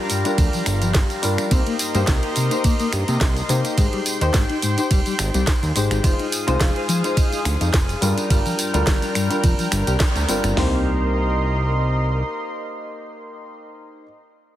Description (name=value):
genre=nu-disco, nu disco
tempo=106 BPM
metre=4/4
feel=swing 54% on 16ths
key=C minor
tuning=A4 = 436 Hz
part: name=warm baby grand piano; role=accompaniment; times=0.0-14.0 s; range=G3 to C5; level=-25 LUFS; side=left 2 dB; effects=sidechain pumping, tape echo
part: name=lush unison pad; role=sustained chords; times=0.0-13.6 s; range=G4 to F6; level=-28 LUFS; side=right 1 dB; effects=chorus, sidechain pumping
part: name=mellow electric guitar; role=riff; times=0.0-10.8 s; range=G2 to C5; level=-26 LUFS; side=left 2 dB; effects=lush chorus, tape echo
part: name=house drum kit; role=drums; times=0.1-10.5 s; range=finger snaps, hi-hat, ride cymbal, snare drum, tambourine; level=-25 LUFS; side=right 1 dB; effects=none
part: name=fat analog bass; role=bass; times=0.4-12.2 s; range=Eb1 to C3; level=-22 LUFS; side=equal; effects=none
part: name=dusty soul sampler-style drum kit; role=drums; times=0.4-10.7 s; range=hi-hat, kick drum, snare drum, toms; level=-19 LUFS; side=right 1 dB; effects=none
room=light reverb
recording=heavily compressed radio sound, multiband compression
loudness=-18 LUFS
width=side -13 dB against mid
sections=0.0-10.6 A section; 10.6-12.8 B section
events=drop 0.0-10.6; band accent 10.0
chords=0.0 Gm7; 1.5 Cm7; 3.8 Abmaj7; 6.0 Fm7; 8.0 Gm7; 10.6 Cm7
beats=0.38 0.95 | 1.51 2.08 2.65 3.21 | 3.78 4.34 4.91 5.47 | 6.04 6.61 7.17 7.74 | 8.30 8.87 9.44 10.00 | 10.57 11.14 11.70 12.27